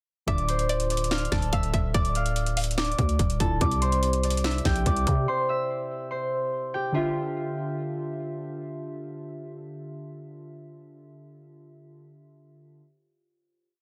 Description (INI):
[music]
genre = hip hop, trap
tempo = 144 BPM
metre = 4/4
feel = half-time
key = D minor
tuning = A4 = 439 Hz
[part]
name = concert harp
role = melody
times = 0.3-9.5 s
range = F4 to F6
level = -32 LUFS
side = equal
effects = low-pass filter, tape echo
[part]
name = string-like resonator pluck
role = second line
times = 0.3-3.2 s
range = D5 to F5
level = -38 LUFS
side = equal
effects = chorus, tape echo
[part]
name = warbly lo-fi synth keys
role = accompaniment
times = 0.3-12.8 s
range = C3 to E5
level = -37 LUFS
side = equal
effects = chorus, low-pass filter
[part]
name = growling 808-style bass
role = bass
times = 0.3-5.3 s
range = D1 to C3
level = -29 LUFS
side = equal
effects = none
[part]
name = trap drum kit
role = drums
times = 0.3-5.2 s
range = hi-hat, kick drum, snare drum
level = -30 LUFS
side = equal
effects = none
[sound]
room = digital ambience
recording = dense, heavily limited modern master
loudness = -27 LUFS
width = mono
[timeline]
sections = 0.3-6.9 hook; 6.9-10.3 final chord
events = none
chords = 0.3 Dmadd9; 3.6 C; 6.9 Dmadd9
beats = | 0.28 0.69 1.11 1.53 | 1.94 2.36 2.78 3.19 | 3.61 4.03 4.44 4.86 | 5.28 5.69 6.11 6.53 | 6.94 7.36 7.78 8.19 | 8.61 9.03 9.44 9.86